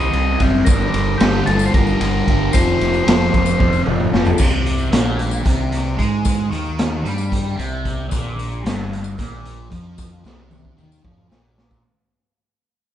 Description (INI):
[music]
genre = psychedelic rock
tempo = 226 BPM (eighths)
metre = 7/8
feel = straight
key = C minor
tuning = A4 = 440 Hz
[part]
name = combo organ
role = melody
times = 0.0-3.8 s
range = G4 to Eb5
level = -22 LUFS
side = equal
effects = none
[part]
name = fuzz guitar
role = riff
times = 0.0-11.8 s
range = F2 to C4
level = -21 LUFS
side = equal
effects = distortion, phaser
[part]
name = growling fingered electric bass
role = bass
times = 0.0-11.8 s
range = F1 to Ab2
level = -23 LUFS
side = equal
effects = overdrive
[part]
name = tambourine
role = percussion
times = 0.0-11.8 s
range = none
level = -36 LUFS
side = left 7 dB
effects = none
[part]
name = raw garage drum kit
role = drums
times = 0.1-11.8 s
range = crash cymbal, hi-hat, kick drum, ride cymbal, snare drum, toms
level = -19 LUFS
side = equal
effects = none
[sound]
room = light reverb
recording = band playing live in one room, nothing above 10.7 kHz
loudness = -15 LUFS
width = side -11 dB against mid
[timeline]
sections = 0.0-4.4 A section; 4.4-11.8 B section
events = drum fill 3.6-4.4, 10.2-11.8; fade-out 4.4-11.8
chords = 0.0 Cm; 0.7 Gm; 2.5 F5; 4.4 Cm; 8.1 Bb5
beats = 0.14 0.40 | 0.67 0.93 1.20 1.47 1.73 2.00 2.26 | 2.53 2.80 3.06 3.33 3.59 3.86 4.13 | 4.39 4.66 4.92 5.19 5.46 5.72 5.99 | 6.26 6.52 6.79 7.05 7.32 7.59 7.85 | 8.12 8.38 8.65 8.91 9.18 9.45 9.71 | 9.98 10.24 10.51 10.77 11.04 11.30 11.57